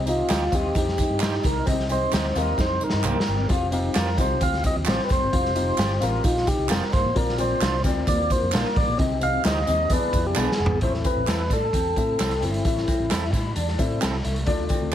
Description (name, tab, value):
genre	uptempo 1960s-style soul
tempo	131 BPM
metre	4/4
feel	straight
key	C minor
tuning	A4 = 444 Hz
part	warm upright piano	accompaniment	0.0-14.9 s	A2 to A5	-29 LUFS	left 3 dB	none
part	vintage muted fingered electric bass	bass	0.0-14.9 s	F1 to A2	-28 LUFS	equal	none
part	tonewheel organ	melody	0.1-13.3 s	E4 to F5	-26 LUFS	equal	slow rotary speaker
part	electric guitar through a small old amp	riff	0.1-14.9 s	A3 to G4	-31 LUFS	left 4 dB	phaser
part	raw garage drum kit	drums	0.1-14.9 s	hi-hat, kick drum, snare drum, toms	-25 LUFS	equal	none
part	tambourine and handclaps	percussion	0.1-14.8 s	none	-35 LUFS	right 6 dB	none
part	electric guitar at the edge of break-up	stabs	0.3-14.9 s	C4 to C5	-31 LUFS	right 6 dB	none
room	light reverb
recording	heavily compressed radio sound, multiband compression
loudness	-20 LUFS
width	side -10 dB against mid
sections	0.0-10.8 A section; 10.8-14.9 B section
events	tonewheel organ solo 0.0-10.8; drum fill 2.6-3.5, 10.4-10.8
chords	0.0 Cm; 3.5 Fsus2; 7.2 Bbadd9; 9.0 Cm; 9.9 E7; 10.8 Am